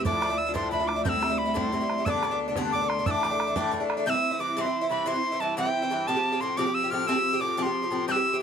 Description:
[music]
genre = celtic folk, Celtic jig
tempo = 120 BPM (dotted quarters)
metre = 6/8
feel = straight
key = unclear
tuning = A4 = 440 Hz
[part]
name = bright reedy mid whistle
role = melody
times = 0.0-8.4 s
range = G5 to G6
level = -27 LUFS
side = equal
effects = none
[part]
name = Irish bouzouki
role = accompaniment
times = 0.0-8.4 s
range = G2 to G4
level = -27 LUFS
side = equal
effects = none
[part]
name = rich chamber string section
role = drone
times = 0.0-4.1 s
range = D2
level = -36 LUFS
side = left 1 dB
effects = none
[part]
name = bodhran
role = percussion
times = 0.1-4.0 s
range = none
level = -32 LUFS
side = right 3 dB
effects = none
[sound]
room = light reverb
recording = close, detailed microphones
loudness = -24 LUFS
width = side -7 dB against mid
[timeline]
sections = 0.0-4.1 A section; 4.1-8.4 B section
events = none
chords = 0.1 Dmadd9; 1.1 Am7; 2.1 G; 3.1 Dsus2; 4.1 C; 6.1 Fadd9

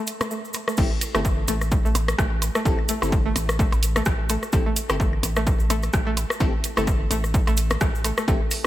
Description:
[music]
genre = minimal techno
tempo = 128 BPM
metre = 4/4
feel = swing 57% on 16ths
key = A minor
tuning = A4 = 439 Hz
[part]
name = punchy analog drum machine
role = drums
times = 0.1-8.6 s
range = crash cymbal, hi-hat, rim click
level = -30 LUFS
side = right 2 dB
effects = overdrive
[part]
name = cabasa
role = percussion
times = 0.1-8.6 s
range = none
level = -34 LUFS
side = right 2 dB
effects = none
[part]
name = string-like resonator pluck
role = riff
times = 0.2-8.7 s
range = A3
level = -30 LUFS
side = equal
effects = chorus, sidechain pumping, digital delay
[part]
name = electronic rim click, percussion blips and claves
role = percussion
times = 0.2-8.7 s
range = none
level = -29 LUFS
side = left 1 dB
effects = digital delay
[part]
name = wavetable chord stab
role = stabs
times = 0.8-8.7 s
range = C4 to A4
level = -32 LUFS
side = left 2 dB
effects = digital delay
[part]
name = saturated sub bass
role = bass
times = 0.8-8.7 s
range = G1 to A1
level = -26 LUFS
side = equal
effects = sidechain pumping
[part]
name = electronic kick drum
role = drums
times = 0.8-8.4 s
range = none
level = -22 LUFS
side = equal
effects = overdrive
[sound]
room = light reverb, digital ambience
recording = bright 1980s-style digital production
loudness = -20 LUFS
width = side -14 dB against mid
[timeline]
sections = 0.8-8.7 A section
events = drop 0.8-8.7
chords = 0.0 A5; 0.8 Am7

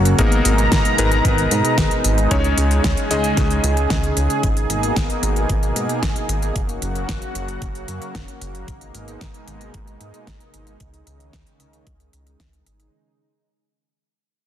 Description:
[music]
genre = synthwave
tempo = 113 BPM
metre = 4/4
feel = straight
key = G# minor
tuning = A4 = 444 Hz
[part]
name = lush unison pad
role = sustained chords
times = 0.0-12.9 s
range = B2 to A#5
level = -23 LUFS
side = right 1 dB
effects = chorus, sidechain pumping
[part]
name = clear electric grand piano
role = stabs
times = 0.0-4.4 s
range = F#3 to D#5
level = -22 LUFS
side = left 2 dB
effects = digital delay
[part]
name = chorused synth bass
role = bass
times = 0.0-12.9 s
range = F#1 to G#2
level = -21 LUFS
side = equal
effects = none
[part]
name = pop drum kit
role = drums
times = 0.1-12.9 s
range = hi-hat, snare drum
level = -25 LUFS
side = equal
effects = studio reverb
[part]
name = electronic kick drum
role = drums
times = 0.2-12.5 s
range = none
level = -22 LUFS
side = equal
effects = studio reverb
[sound]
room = light reverb, digital ambience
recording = dense, heavily limited modern master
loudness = -16 LUFS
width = side -10 dB against mid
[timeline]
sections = 0.0-12.9 A section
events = fade-out 0.0-12.9; filter sweep on analog synth bass 0.0-12.9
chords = 0.2 G#madd9; 2.3 C#sus2; 4.4 G#madd9; 6.6 F#; 8.7 G#madd9; 10.8 C#sus2

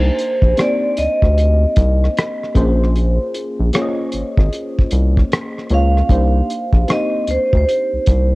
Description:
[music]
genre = R&B, neo-soul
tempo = 76 BPM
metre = 4/4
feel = swing 64% on 16ths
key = C phrygian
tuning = A4 = 438 Hz
[part]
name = vibraphone with hard mallets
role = melody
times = 0.0-8.3 s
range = C5 to F5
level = -19 LUFS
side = right 1 dB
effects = cassette tape
[part]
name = mellow FM electric piano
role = accompaniment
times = 0.0-8.3 s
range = Bb3 to Ab5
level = -22 LUFS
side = left 1 dB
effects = chorus, cassette tape
[part]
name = round analog bass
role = bass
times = 0.0-8.3 s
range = Ab1 to D2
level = -15 LUFS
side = equal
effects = tube saturation
[part]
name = cloth-damped thuddy drum kit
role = drums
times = 0.2-8.3 s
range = hi-hat, kick drum, rim click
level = -16 LUFS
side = equal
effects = cassette tape
[sound]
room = small room ambience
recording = home recording on cassette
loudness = -14 LUFS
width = side -21 dB against mid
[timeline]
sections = 0.0-8.3 A section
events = none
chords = 0.0 Cm9; 2.5 Bbm9; 6.1 Cm9

